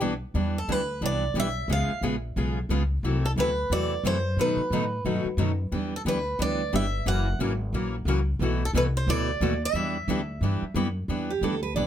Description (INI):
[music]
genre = acoustic string swing (jazz manouche)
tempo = 179 BPM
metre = 4/4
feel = swing 61% on 8ths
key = E minor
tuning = A4 = 441 Hz
[part]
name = picked steel-string acoustic guitar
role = accompaniment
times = 0.0-11.9 s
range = B2 to G#4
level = -31 LUFS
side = left 6 dB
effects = none
[part]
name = picked steel-string acoustic guitar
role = accompaniment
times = 0.0-11.9 s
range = B2 to B4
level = -31 LUFS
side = right 5 dB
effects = none
[part]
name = upright bass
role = bass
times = 0.0-11.9 s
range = F#1 to B2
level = -28 LUFS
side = equal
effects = none
[part]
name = picked swing-style acoustic guitar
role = melody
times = 0.6-10.7 s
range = A4 to F#5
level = -29 LUFS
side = right 2 dB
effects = none
[part]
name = picked steel-string acoustic guitar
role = second line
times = 11.3-11.9 s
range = G4 to D5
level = -28 LUFS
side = right 6 dB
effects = none
[sound]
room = light reverb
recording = none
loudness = -24 LUFS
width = side -10 dB against mid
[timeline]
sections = 0.4-11.1 A section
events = none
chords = 0.4 Em7; 1.7 C#7; 3.0 F#m7b5; 4.4 B7; 5.7 Em7; 7.1 F#7; 8.4 B7sus4; 9.8 Em9; 11.1 Em7